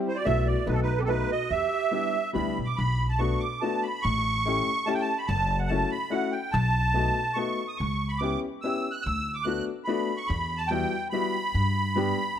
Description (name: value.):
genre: musette waltz.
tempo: 144 BPM.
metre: 3/4.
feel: straight.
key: B minor.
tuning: A4 = 439 Hz.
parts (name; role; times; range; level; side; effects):
clear upright piano; accompaniment; 0.0-12.2 s; G3 to G4; -30 LUFS; left 4 dB; none.
musette accordion; melody; 0.1-12.4 s; G4 to F#6; -28 LUFS; right 3 dB; none.
mellow clarinet; second line; 0.1-2.3 s; C4 to A4; -36 LUFS; right 5 dB; none.
upright bass; bass; 0.3-12.1 s; F#1 to G2; -28 LUFS; equal; none.
room: light reverb.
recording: close, detailed microphones.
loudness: -24 LUFS.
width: side -9 dB against mid.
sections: 0.0-2.8 A section; 2.8-12.4 B section.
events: none.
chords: 0.3 B7sus4; 0.7 B7; 1.5 Em7; 2.8 Bm7; 4.0 A7; 5.3 F#m7; 6.5 B7; 7.8 C#m7b5; 9.0 Bm7/D; 10.3 Emadd9; 11.5 G.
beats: | 0.26 0.67 1.08 | 1.50 1.92 2.35 | 2.78 3.20 3.62 | 4.04 4.46 4.88 | 5.29 5.70 6.12 | 6.53 6.95 7.37 | 7.79 8.21 8.63 | 9.05 9.46 9.88 | 10.29 10.71 11.12 | 11.54 11.96 12.39.